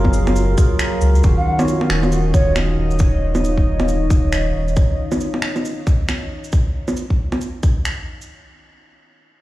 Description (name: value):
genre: future garage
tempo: 136 BPM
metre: 4/4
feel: swing 61% on 16ths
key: Eb minor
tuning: A4 = 440 Hz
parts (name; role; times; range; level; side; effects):
- tine electric piano; accompaniment; 0.0-3.0 s; Eb3 to Bb4; -22 LUFS; right 1 dB; phaser, sidechain pumping, low-pass filter, tape echo
- deep dark ambient pad; sustained chords; 0.0-6.5 s; Gb3 to F5; -26 LUFS; equal; chorus, built-in reverb, sidechain pumping
- soft dub sub bass; bass; 0.0-4.8 s; Eb1 to Db2; -18 LUFS; equal; tube saturation, sidechain pumping
- electronic bongos, cabasa, shaker and finger snaps; drums; 0.0-8.3 s; none; -23 LUFS; right 1 dB; none
- electronic kick drum; drums; 0.0-7.7 s; none; -15 LUFS; equal; none
- drifting glass-harmonics texture; texture; 0.0-4.8 s; Eb4 to F5; -35 LUFS; left 2 dB; chorus, built-in reverb
- mellow hollow jazz flute; melody; 1.4-2.6 s; Db5 to Gb5; -26 LUFS; right 2 dB; tape echo
room: little or no reverb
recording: played on a big sound system in a bare room, stone room reverb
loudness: -15 LUFS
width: side -16 dB against mid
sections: 0.0-1.2 A section; 1.2-8.3 B section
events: filter sweep on tine electric piano 1.2-3.0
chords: 0.0 Gbmaj9; 1.2 Ebm9